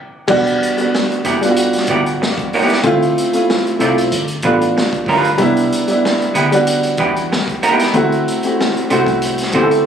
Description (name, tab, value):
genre	R&B, neo-soul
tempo	94 BPM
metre	4/4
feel	swing 55% on 16ths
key	E minor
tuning	A4 = 440 Hz
part	warm grand piano	accompaniment	0.3-9.9 s	G3 to A4	-15 LUFS	equal	none
part	vintage muted fingered electric bass	bass	0.3-9.8 s	E1 to E2	-25 LUFS	left 1 dB	none
part	crunchy breakbeat drum kit	drums	0.3-9.8 s	crash cymbal, hi-hat, kick drum, snare drum	-22 LUFS	equal	none
part	electric guitar through a small old amp	second line	1.2-9.7 s	G3 to D5	-18 LUFS	right 4 dB	spring reverb
room	moderate small room reverb, RT60 0.5 s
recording	recorded on a phone in the room, club reverb, compression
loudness	-13 LUFS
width	side -8 dB against mid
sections	0.3-9.9 A section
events	stop 0.0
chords	0.3 Em7 (rootless); 2.8 Dm7; 4.1 G7; 5.4 Cmaj7 (rootless); 7.9 D7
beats	| 0.28 0.92 1.56 2.20 | 2.83 3.47 4.11 4.75 | 5.39 6.03 6.66 7.30 | 7.94 8.58 9.22 9.86